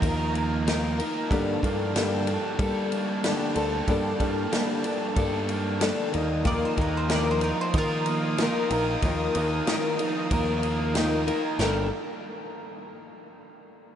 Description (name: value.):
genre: folk rock and heartland rock.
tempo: 93 BPM.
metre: 4/4.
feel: straight.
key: G minor.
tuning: A4 = 441 Hz.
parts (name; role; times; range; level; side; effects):
picked steel-string acoustic guitar; accompaniment; 0.0-11.9 s; G2 to Bb4; -28 LUFS; left 3 dB; none.
dark studio string section; sustained chords; 0.0-11.9 s; Bb3 to Eb6; -36 LUFS; right 2 dB; none.
overdriven semi-hollow guitar; riff; 0.0-11.9 s; G2 to Bb4; -32 LUFS; right 3 dB; none.
picked electric bass; bass; 0.0-11.9 s; G1 to G3; -29 LUFS; right 1 dB; none.
natural country drum kit; drums; 0.0-11.7 s; china cymbal, kick drum, ride cymbal, snare drum; -30 LUFS; equal; none.
bowl-back mandolin; second line; 6.5-11.9 s; F4 to D5; -37 LUFS; right 2 dB; none.
room: wet cathedral reverb, RT60 6.3 s.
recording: dreamy mix soaked in reverb, nothing above 10.9 kHz.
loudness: -23 LUFS.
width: side -9 dB against mid.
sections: 0.0-11.6 A section; 11.6-14.0 B section.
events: none.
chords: 0.0 Ebsus2; 1.3 Gmadd9; 6.1 Ebsus2; 11.6 Gmadd9.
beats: 0.02 0.67 | 1.31 1.95 2.60 3.24 | 3.88 4.53 5.17 5.81 | 6.46 7.10 7.74 8.39 | 9.03 9.67 10.32 10.96 | 11.60.